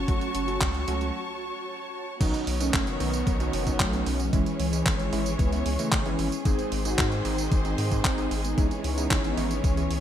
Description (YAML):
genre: italo disco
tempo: 113 BPM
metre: 4/4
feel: straight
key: C# minor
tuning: A4 = 439 Hz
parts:
  - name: mellow synth brass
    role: melody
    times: 0.0-10.0 s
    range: C#3 to G#4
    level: -31 LUFS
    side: equal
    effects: chorus, ping-pong delay
  - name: rich symphonic string section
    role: sustained chords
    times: 0.0-10.0 s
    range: D#3 to C#6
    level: -32 LUFS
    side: left 1 dB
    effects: none
  - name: round analog bass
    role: bass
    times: 0.0-10.0 s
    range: F#1 to G#2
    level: -30 LUFS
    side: equal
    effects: none
  - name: warm electric grand piano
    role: stabs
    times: 0.1-10.0 s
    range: G#2 to G#4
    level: -34 LUFS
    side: right 4 dB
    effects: none
  - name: clean 12-bit digital drum machine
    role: drums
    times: 0.1-10.0 s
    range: crash cymbal, handclaps, hi-hat, tambourine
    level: -31 LUFS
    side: right 1 dB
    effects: studio ambience, gated reverb
  - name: electronic kick drum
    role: drums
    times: 0.1-9.7 s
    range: none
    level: -26 LUFS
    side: equal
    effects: overdrive, studio ambience
room: moderate plate reverb, RT60 2.9 s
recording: bright 1980s-style digital production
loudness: -24 LUFS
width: side -10 dB against mid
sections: 0.0-2.2 A section; 2.2-10.0 B section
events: break 1.1-2.2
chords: 0.0 F#m; 2.2 Badd9; 4.3 C#m; 6.5 G#; 8.6 C#m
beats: | 0.08 0.61 1.14 1.68 | 2.21 2.74 3.27 3.80 | 4.33 4.86 5.39 5.92 | 6.45 6.99 7.52 8.05 | 8.58 9.11 9.64